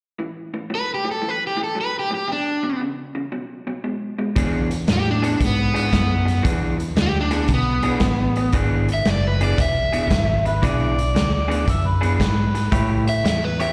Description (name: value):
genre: electric blues shuffle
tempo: 115 BPM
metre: 4/4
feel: swing 67% on 8ths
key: E mixolydian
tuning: A4 = 440 Hz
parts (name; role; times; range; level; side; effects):
- electric guitar through a small old amp; riff; 0.2-13.7 s; E2 to C#5; -29 LUFS; equal; spring reverb, slapback echo
- overdriven semi-hollow guitar; melody; 0.8-13.7 s; B3 to E5; -25 LUFS; equal; slapback echo
- fingered electric bass; bass; 4.4-13.7 s; E1 to A2; -24 LUFS; equal; none
- raw garage drum kit; drums; 4.4-13.7 s; hi-hat, kick drum, snare drum; -26 LUFS; equal; none
- mellow harmonica; second line; 10.5-13.0 s; B4 to E5; -28 LUFS; equal; overdrive, slapback echo
room: little or no reverb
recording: live gig heard through the venue's PA, recital hall reverb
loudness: -21 LUFS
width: mono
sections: 0.2-4.4 A section; 4.4-13.7 B section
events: none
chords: 0.2 A5; 2.3 E5; 3.3 B5; 4.4 E7; 12.7 A7